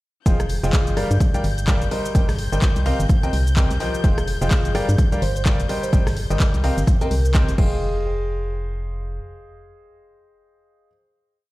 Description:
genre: piano house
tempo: 127 BPM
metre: 4/4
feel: swing 59% on 16ths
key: F minor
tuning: A4 = 440 Hz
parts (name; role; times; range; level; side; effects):
- rich studio string section; sustained chords; 0.3-7.6 s; G6; -34 LUFS; left 5 dB; sidechain pumping
- clear concert grand piano; riff; 0.3-10.9 s; F3 to G5; -26 LUFS; left 1 dB; sidechain pumping, tape echo
- organ-like FM bass; bass; 0.3-9.2 s; F1 to G2; -22 LUFS; equal; sidechain pumping
- electronic kick drum; drums; 0.3-7.7 s; none; -17 LUFS; equal; overdrive
- house drum kit; drums; 0.3-7.7 s; cabasa, crash cymbal, handclaps, hi-hat, rim click; -30 LUFS; equal; overdrive
- open jazz drum kit; drums; 0.3-7.6 s; hi-hat, snare drum; -43 LUFS; left 1 dB; none
- bell-like FM electric piano; melody; 5.2-7.3 s; Bb4 to Eb5; -32 LUFS; equal; chorus, phaser, tape echo
room: little or no reverb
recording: played on a big sound system in a bare room, large studio reverb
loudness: -18 LUFS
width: side -19 dB against mid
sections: 0.3-7.8 drop; 7.8-11.5 final hit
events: drop 0.3-7.8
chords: 0.3 Fm9; 1.0 Gm7; 1.9 Eb6/G; 2.9 Cm7; 4.0 Fm9; 4.7 Gm7; 5.7 Eb6/G; 6.6 Cm7; 7.6 Fm9

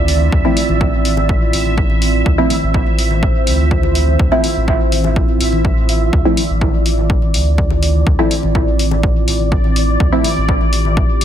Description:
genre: dub techno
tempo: 124 BPM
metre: 4/4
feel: straight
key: D minor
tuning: A4 = 439 Hz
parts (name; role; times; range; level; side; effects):
- dark analog pad; sustained chords; 0.0-11.2 s; C4 to D5; -21 LUFS; right 3 dB; chorus, phaser, sidechain pumping
- soft dub sub bass; bass; 0.0-11.2 s; A1 to D2; -17 LUFS; equal; tube saturation, sidechain pumping
- bubbling stepped-filter texture; texture; 0.0-11.2 s; D5 to E5; -24 LUFS; right 2 dB; chorus, built-in reverb, sidechain pumping
- electronic hi-hat; drums; 0.1-11.2 s; none; -22 LUFS; left 2 dB; none
- congas; percussion; 0.1-11.2 s; none; -25 LUFS; left 5 dB; overdrive, sidechain pumping on perc, dub echo
- electronic kick drum; drums; 0.3-11.1 s; none; -17 LUFS; equal; none
- filtered dub chord stab; stabs; 0.4-10.3 s; F3 to E4; -19 LUFS; equal; chorus, phaser, sidechain pumping, dub echo
room: light reverb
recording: none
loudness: -12 LUFS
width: side -10 dB against mid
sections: 0.0-11.2 A section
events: none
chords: 0.0 Dm9

